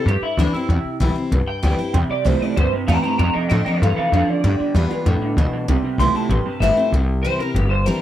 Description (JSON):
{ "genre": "rock", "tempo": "193 BPM", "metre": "4/4", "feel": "straight", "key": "C major", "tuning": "A4 = 437 Hz", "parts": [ { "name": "electric guitar through a small old amp", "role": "melody", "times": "0.0-8.0 s", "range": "D4 to C6", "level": "-22 LUFS", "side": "equal", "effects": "analog chorus, analog delay" }, { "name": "picked steel-string acoustic guitar", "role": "accompaniment", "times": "0.0-8.0 s", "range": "F2 to F4", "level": "-24 LUFS", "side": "left 2 dB", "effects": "none" }, { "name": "upright bass", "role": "bass", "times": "0.1-7.9 s", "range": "G1 to A2", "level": "-18 LUFS", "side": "equal", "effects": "none" }, { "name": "electric guitar through a small old amp", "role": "riff", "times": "1.9-6.9 s", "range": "F2 to A3", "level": "-24 LUFS", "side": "right 5 dB", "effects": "analog chorus" } ], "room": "light reverb", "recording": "none", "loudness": "-16 LUFS", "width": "side -12 dB against mid", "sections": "0.0-6.9 A section; 6.9-8.0 B section", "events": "clean electric guitar solo 0.0-6.9", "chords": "0.0 C; 3.2 F; 4.4 G7; 5.7 C", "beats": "0.08 0.39 | 0.70 1.01 1.32 1.64 | 1.95 2.26 2.57 2.88 | 3.19 3.51 3.82 4.13 | 4.44 4.75 5.06 5.37 | 5.68 6.00 6.31 6.62 | 6.93 7.24 7.55 7.86" }